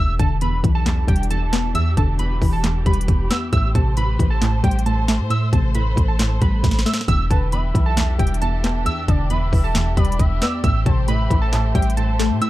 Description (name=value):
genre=hip hop, trap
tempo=135 BPM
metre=4/4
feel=half-time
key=E minor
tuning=A4 = 440 Hz
part: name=warbly lo-fi synth keys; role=melody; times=0.0-12.5 s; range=G5 to E6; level=-26 LUFS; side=right 3 dB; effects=chorus
part: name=soft round pluck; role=accompaniment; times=0.0-12.5 s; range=E2 to B3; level=-23 LUFS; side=equal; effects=chorus
part: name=warm studio string section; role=sustained chords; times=0.0-12.5 s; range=E3 to C5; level=-32 LUFS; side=left 2 dB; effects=none
part: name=warm 808-style bass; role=bass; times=0.0-12.5 s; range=E1 to A2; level=-21 LUFS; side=equal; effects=none
part: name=trap drum kit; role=drums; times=0.2-12.5 s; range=handclaps, hi-hat, kick drum, snare drum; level=-20 LUFS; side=equal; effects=none
part: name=gliding portamento lead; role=second line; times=7.3-12.4 s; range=B4 to E5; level=-32 LUFS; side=left 3 dB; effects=chorus, tape echo
room=little or no reverb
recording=dark, warm production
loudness=-16 LUFS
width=side -16 dB against mid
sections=0.0-12.5 A section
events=drum fill 6.6-7.1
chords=0.0 Em7; 3.5 Am7; 7.1 Em7; 10.6 Am7